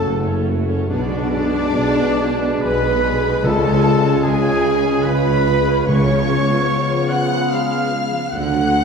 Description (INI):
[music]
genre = classical, slow romantic movement for symphony orchestra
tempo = 73 BPM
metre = 3/4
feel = rubato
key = unclear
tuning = A4 = 440 Hz
[part]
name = warm symphonic violin section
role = melody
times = 0.0-8.8 s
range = D5 to F#6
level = -28 LUFS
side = left 3 dB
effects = none
[part]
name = clear clarinet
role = second line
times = 0.0-8.8 s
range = D4 to F#5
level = -28 LUFS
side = left 1 dB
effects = none
[part]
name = clear oboe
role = second line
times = 0.0-8.8 s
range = D4 to F#5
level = -29 LUFS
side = right 1 dB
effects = none
[part]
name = small flute group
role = second line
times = 0.0-8.8 s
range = D4 to F#5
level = -27 LUFS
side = left 2 dB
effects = none
[part]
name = warm symphonic violin section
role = second line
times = 0.0-8.8 s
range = D4 to F#5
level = -28 LUFS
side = left 1 dB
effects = none
[part]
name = rich studio viola section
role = accompaniment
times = 0.0-8.8 s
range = C#3 to B4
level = -28 LUFS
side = right 1 dB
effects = none
[part]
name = clear trombone section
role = sustained chords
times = 0.0-8.8 s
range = B2 to A3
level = -26 LUFS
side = equal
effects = none
[part]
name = dark French horn section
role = sustained chords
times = 0.0-8.8 s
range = A3 to A4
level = -25 LUFS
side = left 1 dB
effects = none
[part]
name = concert harp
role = arpeggios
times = 0.0-8.8 s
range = F#2 to D6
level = -25 LUFS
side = left 8 dB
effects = none
[part]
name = dark trumpet section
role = stabs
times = 0.0-8.8 s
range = D4 to F#5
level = -24 LUFS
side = right 4 dB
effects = none
[part]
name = mellow tuba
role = bass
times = 0.1-8.8 s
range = F#1 to D2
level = -24 LUFS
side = right 2 dB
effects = none
[part]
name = rich symphonic double bass section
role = bass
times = 0.1-8.8 s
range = F#1 to D2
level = -25 LUFS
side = right 2 dB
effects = none
[part]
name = warm chamber cello section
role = bass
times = 0.1-8.8 s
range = F#2 to D3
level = -25 LUFS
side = right 2 dB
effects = none
[part]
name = timpani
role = percussion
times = 3.4-7.1 s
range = C#3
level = -26 LUFS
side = equal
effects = none
[sound]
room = wet recital hall reverb, RT60 1.8 s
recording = heard from further back in the room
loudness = -15 LUFS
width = side -5 dB against mid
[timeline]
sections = 0.0-8.8 A section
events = none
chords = 0.0 F#m; 0.9 G#dim/B; 3.4 C#; 5.9 C#7; 8.3 D